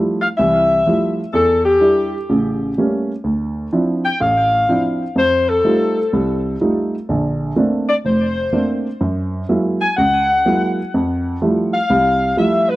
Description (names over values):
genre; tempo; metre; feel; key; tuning
jazz; 125 BPM; 4/4; swing 66% on 8ths; F major; A4 = 443 Hz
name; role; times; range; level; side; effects
warm baby grand piano; accompaniment; 0.0-12.7 s; F1 to F4; -17 LUFS; right 1 dB; none
mellow saxophone section; melody; 0.2-12.8 s; G4 to Ab5; -16 LUFS; left 2 dB; tape echo
room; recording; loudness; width
small room ambience; dry, close 1970s-style studio recording; -15 LUFS; side -17 dB against mid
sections
0.0-12.8 A section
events
none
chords
0.0 Fmaj9; 1.3 Em7; 2.3 A7b9; 3.2 Dm9; 5.2 F9; 7.1 Bbmaj9; 9.0 Gb9; 10.9 Fmaj9